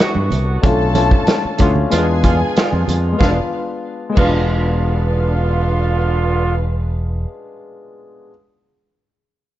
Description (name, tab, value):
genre	lush 1970s-style soul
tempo	93 BPM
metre	4/4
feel	straight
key	unclear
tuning	A4 = 440 Hz
part	dark studio string section	second line	0.0-6.5 s	D4 to A5	-24 LUFS	right 1 dB	tape echo
part	warm concert grand piano	accompaniment	0.0-8.3 s	F#3 to F#4	-22 LUFS	left 4 dB	none
part	mellow horn section	stabs	0.0-6.5 s	D3 to F#4	-23 LUFS	right 4 dB	none
part	vintage drum kit	drums	0.0-4.4 s	crash cymbal, hi-hat, kick drum, snare drum	-17 LUFS	equal	none
part	fingered electric bass	bass	0.2-7.2 s	E1 to G2	-17 LUFS	equal	none
part	congas	percussion	0.2-4.4 s	none	-26 LUFS	right 5 dB	none
room	small room ambience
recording	nothing above 7.7 kHz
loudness	-14 LUFS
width	side -14 dB against mid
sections	0.0-3.2 A section; 3.2-5.8 B section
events	none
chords	0.0 Em9; 0.6 Bm7b5; 1.9 E7b9